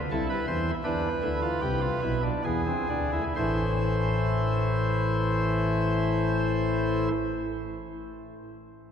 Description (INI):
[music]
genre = classical, baroque-style 3-part fugue for pipe organ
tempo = 62-85 BPM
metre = 3/4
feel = straight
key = A minor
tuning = A4 = 439 Hz
[part]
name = pipe organ, cornet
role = solo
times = 0.1-7.1 s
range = A1 to C5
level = -25 LUFS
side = equal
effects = none
[sound]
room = wet cathedral reverb, RT60 4.5 s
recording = minimal, uncompressed stereo recording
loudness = -24 LUFS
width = side -8 dB against mid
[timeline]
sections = 0.0-3.4 A section; 3.4-8.9 B section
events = slowing down 0.0-3.4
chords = 0.1 Am/C; 0.8 E5; 2.5 E7; 3.4 Am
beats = 0.12 | 0.85 1.62 2.45 | 3.37 4.33 5.29 | 6.25